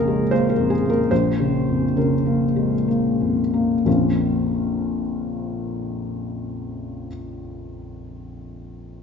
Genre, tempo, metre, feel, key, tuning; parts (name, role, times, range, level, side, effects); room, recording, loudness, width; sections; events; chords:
neoclassical minimalist piano; 60-80 BPM; 3/4; rubato; Bb minor; A4 = 436 Hz
felt-muted upright piano; solo; 0.0-9.0 s; Bb1 to C5; -20 LUFS; left 1 dB
moderate scoring stage reverb, RT60 1.9 s; recorded in a church or concert hall, nothing above 7.6 kHz; -19 LUFS; side -6 dB against mid
0.0-3.9 A section; 3.9-9.0 B section
slowing down 0.0-3.9
0.0 Bbm7; 3.9 Bbm